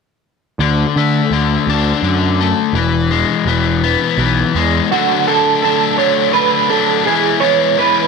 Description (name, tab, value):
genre	rock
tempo	56 BPM (dotted quarters)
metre	6/8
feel	straight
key	D major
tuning	A4 = 439 Hz
part	biting overdriven guitar	riff	0.6-8.1 s	D3 to E4	-15 LUFS	left 11 dB	none
part	fuzz picked electric bass	bass	0.6-4.8 s	E1 to D3	-16 LUFS	right 2 dB	overdrive
part	electric guitar through a small old amp	melody	4.9-8.1 s	F#4 to C#5	-14 LUFS	right 12 dB	analog chorus, tape echo
room	light reverb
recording	1960s-style stereo with parts hard left and right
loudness	-12 LUFS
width	side -4 dB against mid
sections	0.6-4.9 A section; 4.9-8.1 B section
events	none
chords	0.6 D; 2.8 E; 4.9 D; 7.1 E